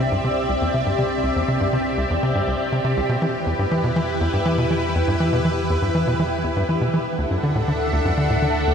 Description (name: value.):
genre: ambient, sequencer-driven space music.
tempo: 121 BPM.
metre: 4/4.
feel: straight.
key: unclear.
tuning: A4 = 443 Hz.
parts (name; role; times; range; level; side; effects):
lush unison pad; sustained chords; 0.0-8.7 s; C4 to F#5; -22 LUFS; equal; chorus, phaser.
tight sequencer bass; riff; 0.0-8.7 s; C2 to E3; -22 LUFS; equal; tape echo.
warm sub bass; bass; 0.0-8.7 s; C2 to E2; -31 LUFS; equal; none.
room: wet huge ambient reverb, RT60 7.6 s.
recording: none.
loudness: -19 LUFS.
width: side -7 dB against mid.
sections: 0.0-8.7 A section.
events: fade-in on sub bass 0.0-8.7.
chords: 0.0 Cadd9; 3.1 Em; 7.1 Dadd9.